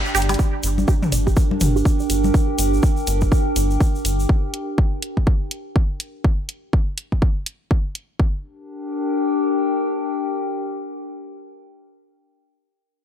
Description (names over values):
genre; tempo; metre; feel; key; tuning
minimal techno; 123 BPM; 4/4; swing 60% on 16ths; G minor; A4 = 441 Hz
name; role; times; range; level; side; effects
warbly tape-like pad; texture; 0.0-12.0 s; D4 to G5; -24 LUFS; equal; chorus, built-in reverb, sidechain pumping
resonant blip pluck; riff; 0.1-2.1 s; G4 to D5; -26 LUFS; right 7 dB; phaser, sidechain pumping, dub echo
rubbery square bass; bass; 0.1-4.3 s; G1; -21 LUFS; equal; sidechain pumping
electronic hi-hat; drums; 0.1-8.1 s; none; -27 LUFS; equal; none
egg shaker; percussion; 0.1-4.3 s; none; -31 LUFS; left 1 dB; none
electronic congas, woodblock and toms; percussion; 0.3-2.3 s; none; -25 LUFS; left 3 dB; none
electronic kick drum; drums; 0.4-8.3 s; none; -18 LUFS; equal; none
room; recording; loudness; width
little or no reverb; none; -18 LUFS; side -9 dB against mid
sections
0.4-8.2 A section; 8.2-12.1 B section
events
drum fill 0.1; filter sweep on synth arpeggio sound 0.4-2.3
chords
0.4 Gm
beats
| 0.39 0.88 1.37 1.85 | 2.34 2.83 3.32 3.81 | 4.29 4.78 5.27 5.76 | 6.24 6.73 7.22 7.71 | 8.20 8.68 9.17 9.66 | 10.15 10.63 11.12 11.61